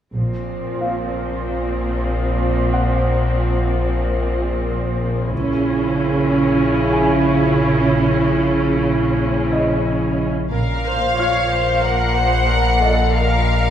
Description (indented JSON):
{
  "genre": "cinematic, suspense film score",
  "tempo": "92 BPM",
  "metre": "4/4",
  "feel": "straight",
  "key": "Bb minor",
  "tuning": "A4 = 441 Hz",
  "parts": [
    { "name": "rich studio viola section", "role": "accompaniment", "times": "0.1-13.7 s", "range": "F3 to Db5", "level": "-21 LUFS", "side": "right 1 dB", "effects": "none" },
    { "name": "rich studio double bass section", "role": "bass", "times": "0.1-0.8, 5.3-5.9, 10.5-11.1 s", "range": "Bb1 to Db2", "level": "-25 LUFS", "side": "right 1 dB", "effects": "none" },
    { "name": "analog drone", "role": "drone", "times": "0.8-13.7 s", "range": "Bb1", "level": "-21 LUFS", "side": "left 1 dB", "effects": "chorus" },
    { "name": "rich studio cello section", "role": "bass", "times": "0.2-13.7 s", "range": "Bb2 to Db3", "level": "-22 LUFS", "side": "right 2 dB", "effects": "none" },
    { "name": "bright grand piano", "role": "texture", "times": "0.8-13.7 s", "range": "F4 to F6", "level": "-28 LUFS", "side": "equal", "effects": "none" },
    { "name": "rich studio violin section", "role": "melody", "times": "10.5-13.7 s", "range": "F5 to Gb5", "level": "-19 LUFS", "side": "left 2 dB", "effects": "none" },
    { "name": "clear studio violin section", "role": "texture", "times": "10.5-13.7 s", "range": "C7 to Db7", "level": "-29 LUFS", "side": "left 3 dB", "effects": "none" }
  ],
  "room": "wet recital hall reverb, RT60 1.5 s",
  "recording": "recorded in a church or concert hall",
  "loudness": "-16 LUFS",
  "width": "side -10 dB against mid",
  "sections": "0.1-10.5 A section; 10.5-13.7 B section",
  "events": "none",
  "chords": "0.1 Bbsus2; 5.3 Dbm; 10.5 Bbsus2"
}